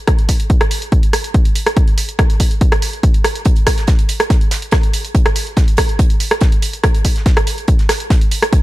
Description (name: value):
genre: techno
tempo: 142 BPM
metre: 4/4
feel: straight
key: none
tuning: none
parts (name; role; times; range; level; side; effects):
- electronic kick drum; drums; 0.1-8.6 s; none; -12 LUFS; equal; none
- punchy analog drum machine; drums; 0.1-8.6 s; hi-hat, rim click; -19 LUFS; right 1 dB; none
- damped 70s drum kit; drums; 3.4-8.6 s; hi-hat, snare drum; -30 LUFS; right 3 dB; high-pass filter on hats, high-pass filter on snare, high-pass filter on room
room: studio reverb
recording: none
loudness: -12 LUFS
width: side -17 dB against mid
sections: 0.0-8.6 A section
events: none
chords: none